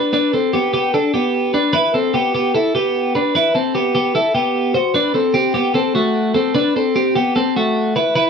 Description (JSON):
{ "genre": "indie pop", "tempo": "150 BPM", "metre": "4/4", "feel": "straight", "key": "E minor", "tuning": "A4 = 439 Hz", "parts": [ { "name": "twelve-string electric guitar", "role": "solo", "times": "0.0-8.3 s", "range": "A3 to C5", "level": "-14 LUFS", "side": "equal", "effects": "none" } ], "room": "moderate studio reverb, RT60 0.5 s", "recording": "none", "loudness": "-14 LUFS", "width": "side -6 dB against mid", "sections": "0.0-1.7 A section; 1.7-8.2 B section", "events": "none", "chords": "0.0 G; 1.7 Em; 4.8 D7; 8.0 E5", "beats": "| 0.14 0.54 0.94 1.34 | 1.75 2.15 2.55 2.95 | 3.35 3.75 4.15 4.55 | 4.95 5.35 5.75 6.15 | 6.55 6.95 7.35 7.75 | 8.15" }